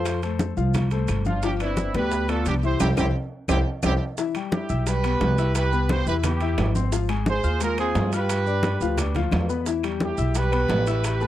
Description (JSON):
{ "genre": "latin, salsa", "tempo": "175 BPM", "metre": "4/4", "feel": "straight", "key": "unclear", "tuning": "A4 = 440 Hz", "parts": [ { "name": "clear horn section", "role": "melody", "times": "0.0-11.3 s", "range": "C4 to C5", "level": "-26 LUFS", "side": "right 3 dB", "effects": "slapback echo" }, { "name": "warm grand piano", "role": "accompaniment", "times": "0.0-11.3 s", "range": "E3 to F6", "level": "-28 LUFS", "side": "left 9 dB", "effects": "none" }, { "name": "upright bass", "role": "bass", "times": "0.0-11.3 s", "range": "G1 to G2", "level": "-24 LUFS", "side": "right 1 dB", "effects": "none" }, { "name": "bongos", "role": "percussion", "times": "0.1-11.3 s", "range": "none", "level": "-34 LUFS", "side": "left 4 dB", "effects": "none" }, { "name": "claves", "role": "percussion", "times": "0.1-11.2 s", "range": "none", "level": "-37 LUFS", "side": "left 13 dB", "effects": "none" }, { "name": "congas", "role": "percussion", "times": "0.1-11.3 s", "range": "none", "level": "-29 LUFS", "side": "equal", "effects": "none" }, { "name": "maracas", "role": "percussion", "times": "0.1-11.3 s", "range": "none", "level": "-38 LUFS", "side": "right 15 dB", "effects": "none" }, { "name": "timbales", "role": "percussion", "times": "0.1-11.2 s", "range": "none", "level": "-33 LUFS", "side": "right 4 dB", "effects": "none" } ], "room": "little or no reverb", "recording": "dry, close 1970s-style studio recording", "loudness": "-21 LUFS", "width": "side -13 dB against mid", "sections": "0.0-4.2 A section; 4.2-11.3 B section", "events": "band accent 2.8-4.2; drum fill 3.1-4.2", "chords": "0.1 F; 1.4 G7; 2.8 C; 4.2 Em; 5.5 Cmaj7; 6.9 Ab6; 8.3 G7; 9.7 Em" }